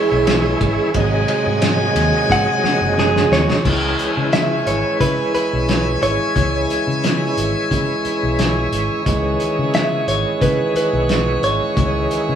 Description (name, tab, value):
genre	straight-eighth soul blues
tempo	89 BPM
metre	4/4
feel	swing 54% on 16ths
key	C# minor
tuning	A4 = 440 Hz
part	direct-recorded clean electric guitar	melody	0.0-12.1 s	G#4 to F#5	-20 LUFS	right 2 dB	none
part	bright tonewheel organ	accompaniment	0.0-12.4 s	B#2 to E4	-20 LUFS	right 1 dB	slow rotary speaker, overdrive, chorus vibrato
part	brilliant horn section	sustained chords	0.0-12.4 s	C#5 to G#5	-24 LUFS	equal	none
part	fingered electric bass	bass	0.1-12.4 s	F#1 to C#3	-22 LUFS	left 1 dB	none
part	cloth-damped thuddy drum kit	drums	0.3-12.3 s	crash cymbal, hi-hat, kick drum, ride cymbal, snare drum	-21 LUFS	left 1 dB	none
room	moderate studio reverb, RT60 0.7 s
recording	band playing live in one room, studio ambience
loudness	-15 LUFS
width	side -8 dB against mid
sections	0.0-3.6 A section; 3.6-12.4 B section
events	clean electric guitar solo 0.0-3.6; drum fill 2.3-3.6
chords	0.0 C#m; 0.9 G#7; 3.6 C#m